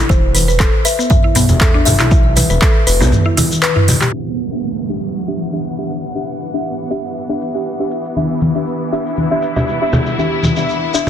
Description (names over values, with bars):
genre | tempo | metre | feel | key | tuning
afro house | 119 BPM | 4/4 | swing 54% on 16ths | E minor | A4 = 440 Hz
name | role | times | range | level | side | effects
mallet-like synth pluck | arpeggios | 0.0-4.1 s | B3 to B4 | -19 LUFS | left 2 dB | chorus, sidechain pumping, digital delay
smooth synth bass | bass | 0.0-3.1 s | E1 to B1 | -16 LUFS | equal | sidechain pumping
kalimba | melody | 0.1-3.6 s | C5 to E5 | -23 LUFS | left 5 dB | digital delay
electronic kick drum | drums | 0.1-2.7 s | none | -13 LUFS | equal | none
congas | percussion | 0.1-4.0, 8.2-11.1 s | none | -18 LUFS | left 2 dB | none
shekere | percussion | 0.1-11.0 s | none | -24 LUFS | left 3 dB | none
deep house drum kit | drums | 0.3-4.2 s | crash cymbal, handclaps, hi-hat, toms | -17 LUFS | right 1 dB | low-pass filter on hats, low-pass filter on snare, low-pass filter on toms, low-pass filter on cymbals, low-pass filter on room
rich symphonic string section | sustained chords | 4.1-11.1 s | E3 to F#5 | -24 LUFS | equal | sidechain pumping
deep mellow chord stab | stabs | 4.1-11.1 s | D4 to E5 | -20 LUFS | equal | chorus, phaser, sidechain pumping, digital delay
downlifter | sound effects | 4.1-8.2 s | none | -24 LUFS | right 4 dB | none
room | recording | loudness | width
light reverb | dense, heavily limited modern master, low-pass filter | -13 LUFS | side -10 dB against mid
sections
0.0-4.1 A section; 4.1-11.1 B section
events
drum fill 3.9; filter sweep on synth stab 4.1-11.1; filter sweep 4.1-11.1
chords
0.0 E5; 4.1 Em7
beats
| 0.10 0.60 1.11 1.61 | 2.12 2.62 3.12 3.63 | 4.13 4.64 5.14 5.64 | 6.15 6.65 7.16 7.66 | 8.17 8.67 9.17 9.68 | 10.18 10.69